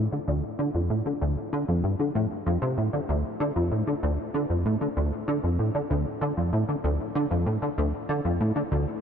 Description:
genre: ambient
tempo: 96 BPM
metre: 4/4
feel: straight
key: D minor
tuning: A4 = 440 Hz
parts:
  - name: plucky analog bass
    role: solo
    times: 0.0-8.9 s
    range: D2 to D3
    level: -24 LUFS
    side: equal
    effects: ensemble chorus, ping-pong delay
room: moderate huge ambient reverb, RT60 8.9 s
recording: none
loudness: -24 LUFS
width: side -7 dB against mid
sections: 0.0-9.0 A section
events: none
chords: none

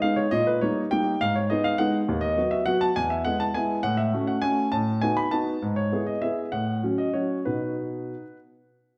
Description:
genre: classical-period piano sonatina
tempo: 67 BPM (dotted quarters)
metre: 6/8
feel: uneven beats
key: unclear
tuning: A4 = 440 Hz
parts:
  - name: warm baby grand piano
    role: solo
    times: 0.0-8.4 s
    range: D#2 to B5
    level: -25 LUFS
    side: equal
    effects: none
room: wet recital hall reverb, RT60 1.5 s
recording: none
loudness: -25 LUFS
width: mono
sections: 0.0-9.0 A section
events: none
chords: 0.3 D#/A#; 1.2 G#m; 2.1 B/D#; 3.0 E; 3.8 F#m/A; 4.7 B7/A; 5.6 E/G#; 6.5 F#m/A; 7.5 B

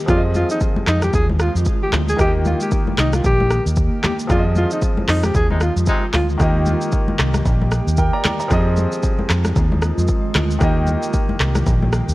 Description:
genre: afrobeats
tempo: 114 BPM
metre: 4/4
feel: swing 58% on 16ths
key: Eb major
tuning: A4 = 441 Hz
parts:
  - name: clear concert grand piano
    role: accompaniment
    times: 0.0-12.1 s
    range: Eb3 to Bb5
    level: -25 LUFS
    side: equal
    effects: none
  - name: granular cloud pad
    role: sustained chords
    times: 0.0-12.1 s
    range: Eb3 to G4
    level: -28 LUFS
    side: equal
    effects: built-in reverb
  - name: breathy alto saxophone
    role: melody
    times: 0.1-6.3 s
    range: Eb4 to Ab4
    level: -22 LUFS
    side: equal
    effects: tape echo
  - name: vintage muted fingered electric bass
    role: bass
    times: 0.1-12.1 s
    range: Bb1 to F2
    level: -18 LUFS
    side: equal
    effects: none
  - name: afro-pop drum kit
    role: drums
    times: 0.1-12.1 s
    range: handclaps, hi-hat, kick drum, rim click, shaker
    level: -20 LUFS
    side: equal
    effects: overdrive
  - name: congas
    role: percussion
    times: 0.1-11.9 s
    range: none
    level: -26 LUFS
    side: left 2 dB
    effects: none
  - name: clear horn section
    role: second line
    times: 5.5-6.0 s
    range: C3 to Eb4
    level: -25 LUFS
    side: left 1 dB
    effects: none
room: studio reverb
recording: worn, warbling old tape, cassette tape, warbly pitch drift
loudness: -15 LUFS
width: side -18 dB against mid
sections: 0.0-12.1 A section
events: band accent 4.3-6.4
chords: 0.1 Fm7; 2.2 Eb; 4.3 Fm7; 6.4 Eb; 8.5 Fm7; 10.6 Eb

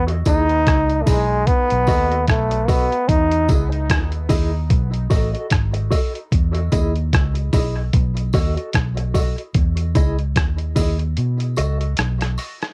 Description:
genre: dub reggae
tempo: 74 BPM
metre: 4/4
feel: swing 57% on 16ths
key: E major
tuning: A4 = 440 Hz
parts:
  - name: brilliant trombone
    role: melody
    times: 0.0-3.5 s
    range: G#3 to D#4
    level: -22 LUFS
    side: equal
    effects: cassette tape, dub echo
  - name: vintage muted fingered electric bass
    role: bass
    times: 0.0-12.4 s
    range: G#1 to B2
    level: -23 LUFS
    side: equal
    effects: transformer saturation
  - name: dusty soul sampler-style drum kit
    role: drums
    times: 0.1-12.7 s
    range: hi-hat, kick drum, rim click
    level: -21 LUFS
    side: equal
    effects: cassette tape
  - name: mellow electric guitar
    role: accompaniment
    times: 0.3-12.6 s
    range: E4 to D#5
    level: -29 LUFS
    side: equal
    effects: tremolo, high-pass filter, cassette tape, dub echo
  - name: tambourine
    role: percussion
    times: 0.3-12.6 s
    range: none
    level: -41 LUFS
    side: equal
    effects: high-pass filter on perc
room: light reverb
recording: home recording on cassette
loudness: -19 LUFS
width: mono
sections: 0.0-12.7 A section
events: break 3.1-12.7; filter sweep 9.5-12.7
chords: 0.0 Emaj7; 1.5 B7; 3.1 Emaj7; 4.7 B7; 6.3 Emaj7; 7.9 B7; 9.5 Emaj7; 11.2 B7

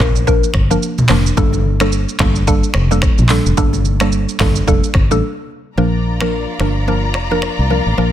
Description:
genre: afrobeats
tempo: 109 BPM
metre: 4/4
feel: swing 58% on 16ths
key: unclear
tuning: A4 = 440 Hz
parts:
  - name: mallet-like synth pluck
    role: accompaniment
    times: 0.0-8.1 s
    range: F3 to Bb4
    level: -18 LUFS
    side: right 1 dB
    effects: chorus, phaser
  - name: fingered electric bass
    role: bass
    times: 0.0-8.1 s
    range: F1 to C2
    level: -16 LUFS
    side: equal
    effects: none
  - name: afro-pop drum kit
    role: drums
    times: 0.0-7.6 s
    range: finger snaps, handclaps, hi-hat, kick drum, rim click, shaker, toms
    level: -16 LUFS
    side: equal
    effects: soft clipping on snare
  - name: congas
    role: percussion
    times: 0.0-5.1 s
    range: none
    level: -25 LUFS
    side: left 2 dB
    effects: none
  - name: warm studio string section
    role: sustained chords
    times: 5.8-8.1 s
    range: F4 to Bb5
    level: -23 LUFS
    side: left 2 dB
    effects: none
room: little or no reverb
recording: dense, heavily limited modern master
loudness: -12 LUFS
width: side -11 dB against mid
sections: 0.0-5.8 A section; 5.8-8.1 B section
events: break 5.2-5.8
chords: 0.0 Bb; 1.4 Gmadd9; 5.8 Bb

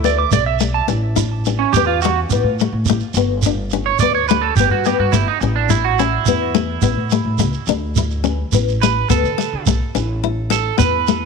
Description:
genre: highlife guitar band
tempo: 106 BPM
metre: 4/4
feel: straight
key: A mixolydian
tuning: A4 = 440 Hz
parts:
  - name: picked steel-string acoustic guitar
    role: accompaniment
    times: 0.0-11.3 s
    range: A3 to E4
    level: -19 LUFS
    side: left 14 dB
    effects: none
  - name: electric guitar at the edge of break-up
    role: arpeggios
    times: 0.0-11.3 s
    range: C#4 to D6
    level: -20 LUFS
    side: right 14 dB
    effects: wide subtle chorus, tape echo
  - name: upright bass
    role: bass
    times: 0.0-11.3 s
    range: G1 to D3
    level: -20 LUFS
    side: equal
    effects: none
  - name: shekere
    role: percussion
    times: 0.1-11.2 s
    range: none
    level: -22 LUFS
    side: right 6 dB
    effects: none
room: light reverb, small room ambience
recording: 1960s-style stereo with parts hard left and right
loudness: -15 LUFS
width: side -5 dB against mid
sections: 0.9-11.3 A section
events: clean electric guitar solo 0.9-11.3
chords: 0.0 Dsus2; 0.9 A; 3.2 G; 5.4 A; 7.7 D5; 9.9 A

